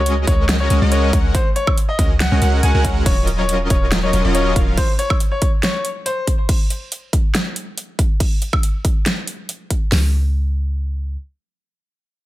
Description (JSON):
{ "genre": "future bass", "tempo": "140 BPM", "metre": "4/4", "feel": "half-time", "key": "unclear", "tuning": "A4 = 440 Hz", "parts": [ { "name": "clear baby grand piano", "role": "melody", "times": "0.0-6.3 s", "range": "C5 to Ab5", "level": "-23 LUFS", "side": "left 2 dB", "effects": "sidechain pumping, digital delay" }, { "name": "big bright polysynth", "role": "riff", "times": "0.0-4.8 s", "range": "Gb3 to Gb5", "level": "-21 LUFS", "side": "equal", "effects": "chorus, vintage 12-bit sampler grit, sidechain pumping" }, { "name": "warm 808-style bass", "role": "bass", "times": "0.0-4.7, 9.9-11.2 s", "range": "Eb1 to Db2", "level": "-18 LUFS", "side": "equal", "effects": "sidechain pumping" }, { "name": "big-room dance drum kit", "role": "drums", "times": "0.1-9.8 s", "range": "crash cymbal, hi-hat, snare drum, woodblock", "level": "-23 LUFS", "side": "right 1 dB", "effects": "overdrive" }, { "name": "big-room dance drum kit", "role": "drums", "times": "0.3-10.0 s", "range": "hi-hat, kick drum, snare drum", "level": "-17 LUFS", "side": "equal", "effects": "overdrive" } ], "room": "little or no reverb", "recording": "none", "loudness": "-15 LUFS", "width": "side -16 dB against mid", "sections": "0.0-9.9 A section; 9.9-12.3 B section", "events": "drop 0.0-9.9", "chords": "0.0 Gb69/Db; 3.1 Ebm9; 6.3 N.C.", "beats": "0.06 0.49 0.92 | 1.35 1.77 2.20 2.63 | 3.06 3.49 3.92 4.35 | 4.78 5.20 5.63 6.06 | 6.49 6.92 7.35 7.78 | 8.20 8.63 9.06 9.49 | 9.92 10.35 10.78" }